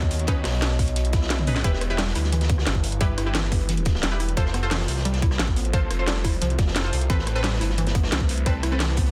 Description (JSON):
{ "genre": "dark technical drum and bass", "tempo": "176 BPM", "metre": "4/4", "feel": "straight", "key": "E phrygian", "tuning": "A4 = 441 Hz", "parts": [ { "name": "dark analog pad", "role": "sustained chords", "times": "0.0-9.1 s", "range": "A3 to D#5", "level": "-38 LUFS", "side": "equal", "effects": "chorus, sidechain pumping" }, { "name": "phased detuned saw bass", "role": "bass", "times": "0.0-9.1 s", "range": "E1 to D#2", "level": "-27 LUFS", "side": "equal", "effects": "phaser, overdrive" }, { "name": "electronic kick drum", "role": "drums", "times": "0.0-9.0 s", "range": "none", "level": "-25 LUFS", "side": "equal", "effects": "none" }, { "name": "crunchy breakbeat drum kit", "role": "drums", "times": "0.1-9.1 s", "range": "hi-hat, snare drum", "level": "-37 LUFS", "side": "equal", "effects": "high-pass filter on hats, high-pass filter on snare, high-pass filter on room" }, { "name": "drum and bass drum kit", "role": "drums", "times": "0.1-9.0 s", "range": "hi-hat, rim click, snare drum, toms", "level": "-31 LUFS", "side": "equal", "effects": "none" }, { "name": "orchestra-hit-like synth stab", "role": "stabs", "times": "0.3-8.8 s", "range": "C4 to C5", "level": "-34 LUFS", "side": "equal", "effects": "built-in reverb, digital delay" }, { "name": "swell", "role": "sound effects", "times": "1.1-1.6 s", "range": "none", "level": "-42 LUFS", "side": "equal", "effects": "none" }, { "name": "warbly dusty pluck", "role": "arpeggios", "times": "1.6-9.1 s", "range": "E3 to E4", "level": "-34 LUFS", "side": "equal", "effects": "chorus, sidechain pumping, digital delay" } ], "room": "little or no reverb", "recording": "dense, heavily limited modern master", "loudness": "-23 LUFS", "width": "mono", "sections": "0.0-9.1 A section", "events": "drum fill 1.4", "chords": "0.0 Badd9; 1.6 Em; 4.4 F; 7.1 Amadd9", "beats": "| 0.28 0.62 0.96 1.30 | 1.64 1.99 2.33 2.67 | 3.01 3.35 3.69 4.03 | 4.37 4.71 5.05 5.39 | 5.74 6.08 6.42 6.76 | 7.10 7.44 7.78 8.12 | 8.46 8.80" }